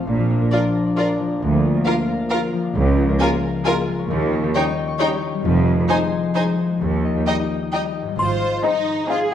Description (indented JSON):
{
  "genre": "cinematic, playful, whimsical film cue",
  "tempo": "134 BPM",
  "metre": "3/4",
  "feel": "straight",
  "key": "Ab major",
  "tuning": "A4 = 440 Hz",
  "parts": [
    { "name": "mellow French horn section", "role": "sustained chords", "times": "0.0-7.9 s", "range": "F3 to Eb4", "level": "-27 LUFS", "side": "left 2 dB", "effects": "none" },
    { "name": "concert harp", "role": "arpeggios", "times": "0.0-9.3 s", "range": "Ab2 to Eb6", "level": "-23 LUFS", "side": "left 5 dB", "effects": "none" },
    { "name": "rich studio cello section", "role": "bass", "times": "0.1-9.3 s", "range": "Db2 to Ab4", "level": "-24 LUFS", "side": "right 2 dB", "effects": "none" },
    { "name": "rich studio double bass section", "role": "bass", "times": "0.1-8.5 s", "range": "F1 to Eb2", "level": "-24 LUFS", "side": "right 3 dB", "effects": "none" },
    { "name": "dark studio violin section", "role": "melody", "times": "0.5-9.3 s", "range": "Ab4 to Ab5", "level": "-28 LUFS", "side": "left 1 dB", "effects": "none" },
    { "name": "rich studio violin section", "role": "second line", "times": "0.5-9.3 s", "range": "Eb4 to Eb5", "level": "-26 LUFS", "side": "equal", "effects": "none" },
    { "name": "clear studio viola section", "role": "accompaniment", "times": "0.5-9.3 s", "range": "C4 to F4", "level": "-26 LUFS", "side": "right 1 dB", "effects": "none" },
    { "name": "small celesta", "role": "melody", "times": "8.2-9.3 s", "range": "Eb5 to C6", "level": "-22 LUFS", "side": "left 6 dB", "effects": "none" },
    { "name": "triangle", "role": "percussion", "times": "8.2-9.1 s", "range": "none", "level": "-51 LUFS", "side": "equal", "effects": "none" }
  ],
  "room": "wet recital hall reverb, RT60 1.6 s",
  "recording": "dark, warm production",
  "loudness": "-17 LUFS",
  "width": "side -10 dB against mid",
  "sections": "0.0-8.2 A section; 8.2-9.3 B section",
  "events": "none",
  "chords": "0.1 Bb; 1.4 Bb/D; 2.8 Bbm7/Db; 4.1 Eb7; 5.4 Fm7; 6.8 Eb; 8.2 Ab"
}